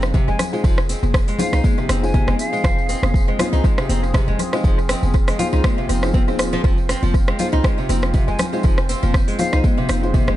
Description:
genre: afro house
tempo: 120 BPM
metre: 4/4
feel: swing 55% on 16ths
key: F minor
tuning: A4 = 440 Hz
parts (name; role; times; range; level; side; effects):
- warm analog pad; sustained chords; 0.0-10.4 s; F3 to C5; -28 LUFS; right 2 dB; chorus, sidechain pumping
- felt-muted upright piano; stabs; 0.0-10.4 s; Eb4 to C5; -28 LUFS; left 3 dB; sidechain pumping, analog delay
- warm 808-style bass; bass; 0.0-10.3 s; Eb1 to C2; -21 LUFS; equal; sidechain pumping
- afro-pop drum kit; drums; 0.0-10.4 s; hi-hat, rim click; -26 LUFS; equal; analog delay
- tambourine; percussion; 0.0-10.4 s; none; -38 LUFS; left 2 dB; none
- nylon-string guitar; arpeggios; 0.1-10.4 s; C3 to F4; -26 LUFS; equal; sidechain pumping, dub echo
- electronic kick drum; drums; 0.1-10.3 s; none; -18 LUFS; equal; none
- congas; percussion; 0.1-10.4 s; none; -27 LUFS; left 5 dB; none
- hollow concert flute; melody; 0.3-3.1, 8.3-9.6 s; F5 to Ab5; -29 LUFS; equal; dub echo
room: small room ambience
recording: echo-heavy mix, nothing above 10.8 kHz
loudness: -16 LUFS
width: side -14 dB against mid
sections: 0.0-10.4 A section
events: none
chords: 0.0 Fm7

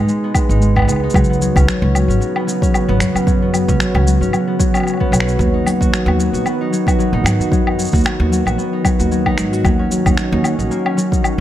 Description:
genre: folktronica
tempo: 113 BPM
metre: 4/4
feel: swing 56% on 16ths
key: unclear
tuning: A4 = 439 Hz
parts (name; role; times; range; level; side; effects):
- warbly tape-like pad; sustained chords; 0.0-11.4 s; B2 to G#4; -24 LUFS; equal; chorus, built-in reverb, vintage 12-bit sampler grit
- concert harp; arpeggios; 0.0-11.4 s; F#3 to F#4; -18 LUFS; left 1 dB; tape echo
- upright bass; bass; 0.0-11.4 s; G#1 to G#2; -17 LUFS; equal; none
- electronic shaker, woodblock and finger snaps; drums; 0.1-11.4 s; none; -22 LUFS; left 2 dB; none
- electronic kick drum; drums; 0.3-11.2 s; none; -17 LUFS; equal; overdrive
room: light reverb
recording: none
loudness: -13 LUFS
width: side -12 dB against mid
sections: 0.0-11.4 A section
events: none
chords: 0.0 G#m; 1.1 C#7sus4; 5.4 B; 9.6 D#m7

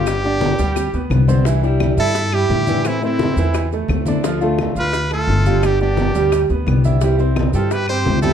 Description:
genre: latin, Cuban son and guajira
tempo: 173 BPM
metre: 4/4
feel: straight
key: C major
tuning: A4 = 440 Hz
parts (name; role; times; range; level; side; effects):
- brilliant trumpet; melody; 0.0-8.3 s; E4 to C5; -23 LUFS; equal; none
- fingerpicked old ladder-braced acoustic guitar; accompaniment; 0.0-8.3 s; C3 to G4; -24 LUFS; left 5 dB; none
- clear baby grand piano; arpeggios; 0.0-8.3 s; E3 to G5; -22 LUFS; right 7 dB; none
- upright bass; bass; 0.0-8.3 s; G1 to A2; -18 LUFS; left 1 dB; none
- bongos; percussion; 0.1-8.2 s; none; -28 LUFS; left 6 dB; none
- claves; percussion; 0.1-8.1 s; none; -35 LUFS; left 4 dB; none
- congas; percussion; 0.1-8.3 s; none; -24 LUFS; left 2 dB; none
- maracas; percussion; 0.1-8.3 s; none; -38 LUFS; right 6 dB; none
- bright reedy concert flute; second line; 2.0-8.3 s; C4 to G4; -28 LUFS; right 2 dB; none
room: light reverb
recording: dark, warm production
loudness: -15 LUFS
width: side -8 dB against mid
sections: 0.0-1.5 A section; 1.5-8.3 A section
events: drum fill 0.8-1.5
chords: 0.1 G; 1.5 Cadd9; 2.9 Am; 4.2 Dm; 5.6 G; 7.0 C

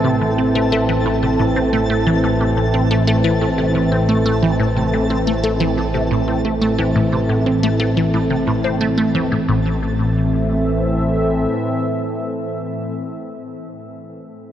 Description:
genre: ambient, sequencer-driven space music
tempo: 89 BPM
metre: 4/4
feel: straight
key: A minor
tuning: A4 = 440 Hz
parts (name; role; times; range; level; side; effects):
- sweeping resonant pad; sustained chords; 0.0-12.9 s; A2 to E5; -18 LUFS; equal; chorus
- resonant blip pluck; riff; 0.0-9.8 s; A2 to C4; -20 LUFS; equal; phaser, vintage 12-bit sampler grit, analog delay
- fat analog bass; bass; 0.0-11.5 s; A1; -23 LUFS; equal; none
- twinkling granular texture; texture; 0.0-9.5 s; A5; -30 LUFS; left 1 dB; built-in reverb
room: wet huge ambient reverb, RT60 8.8 s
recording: worn, warbling old tape, cassette tape, warbly pitch drift, nothing above 10.7 kHz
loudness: -15 LUFS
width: side -10 dB against mid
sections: 0.0-9.5 A section; 9.5-12.2 B section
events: none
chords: 0.0 Am

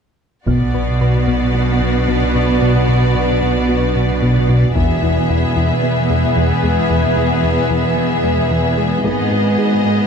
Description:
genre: cinematic, hybrid orchestral and electronic film score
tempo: 112 BPM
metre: 4/4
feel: straight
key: B dorian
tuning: A4 = 440 Hz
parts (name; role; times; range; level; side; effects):
- clear symphonic violin section; melody; 0.5-10.1 s; D5 to E5; -25 LUFS; left 5 dB; none
- rich symphonic violin section; second line; 0.5-10.1 s; F#4 to G#4; -24 LUFS; left 5 dB; none
- rich chamber viola section; accompaniment; 0.5-10.1 s; B3; -22 LUFS; right 1 dB; none
- deep dark ambient pad; sustained chords; 1.5-10.1 s; G#3 to B4; -22 LUFS; left 1 dB; chorus, built-in reverb
- thumb-piano-like synth pluck; arpeggios; 0.5-10.0 s; E3 to B4; -24 LUFS; equal; chorus, phaser, digital delay
- round analog bass; riff; 0.5-10.0 s; E2 to B3; -21 LUFS; left 2 dB; none
- rich symphonic cello section; bass; 0.5-10.1 s; E2 to B2; -20 LUFS; right 2 dB; none
- rich symphonic double bass section; bass; 0.5-10.1 s; E1 to B1; -20 LUFS; right 2 dB; none
- taiko ensemble; drums; 0.5-1.5, 4.8-5.8, 9.0-10.1 s; none; -24 LUFS; left 1 dB; none
room: wet scoring stage reverb, RT60 1.8 s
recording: dark, warm production, high-pass filter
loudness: -13 LUFS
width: side -6 dB against mid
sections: 0.5-10.1 A section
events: build-up 0.5-10.1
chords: 0.5 Bm; 4.8 E; 9.0 G#m

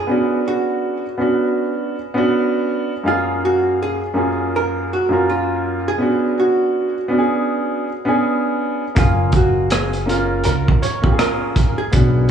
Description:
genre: hip hop, jazz-hop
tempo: 81 BPM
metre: 4/4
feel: swing 59% on 16ths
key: F# major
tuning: A4 = 440 Hz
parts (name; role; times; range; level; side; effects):
- hollow-body jazz guitar; melody; 0.0-12.3 s; E#4 to C#5; -21 LUFS; right 2 dB; lush chorus, tape echo
- warm upright piano; accompaniment; 0.1-12.3 s; F#2 to E#5; -19 LUFS; right 1 dB; none
- upright bass; bass; 9.0-12.3 s; F#1 to C#2; -19 LUFS; equal; none
- crunchy breakbeat drum kit; drums; 9.0-12.3 s; hi-hat, kick drum, rim click; -17 LUFS; right 1 dB; vintage 12-bit sampler grit
room: moderate plate reverb, RT60 2.5 s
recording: dreamy mix soaked in reverb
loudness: -16 LUFS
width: side -8 dB against mid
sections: 0.0-12.3 A section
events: none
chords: 0.1 Bmadd9; 3.0 F#maj9; 6.0 Bmadd9; 9.0 F#maj9

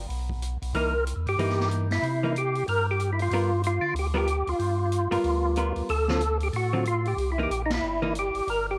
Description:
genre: soul jazz organ trio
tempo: 186 BPM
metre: 4/4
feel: swing 61% on 8ths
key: unclear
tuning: A4 = 440 Hz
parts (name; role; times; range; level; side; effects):
- tonewheel organ; bass; 0.0-8.8 s; G1 to D3; -31 LUFS; equal; slow rotary speaker
- swinging big-band drum kit; drums; 0.1-8.6 s; hi-hat, kick drum, ride cymbal, snare drum; -41 LUFS; equal; none
- hollow-body jazz guitar; accompaniment; 0.7-8.1 s; D3 to A#4; -33 LUFS; equal; none
- percussive tonewheel organ; melody; 0.8-8.8 s; D#4 to Bb4; -29 LUFS; equal; slow rotary speaker, overdrive, chorus vibrato
room: light reverb, small room ambience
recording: none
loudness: -26 LUFS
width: mono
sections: 0.0-8.8 A section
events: band accent 7.7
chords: 0.0 N.C.; 0.7 C7#9; 3.3 G7#9; 5.9 D7#9; 7.2 C7#9

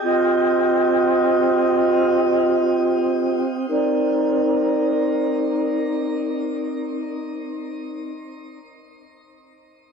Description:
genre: hip hop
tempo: free time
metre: none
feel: none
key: C minor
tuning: A4 = 442 Hz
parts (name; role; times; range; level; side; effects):
- breathy mellow small flute group; solo; 0.0-8.1 s; C4 to Eb5; -18 LUFS; right 1 dB; low-pass filter, tape echo
room: light reverb, small room ambience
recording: dry, gritty hardware recording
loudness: -18 LUFS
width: side -6 dB against mid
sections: 0.0-3.7 A section; 3.7-7.4 B section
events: none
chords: 0.0 Eb69; 3.7 Cm9

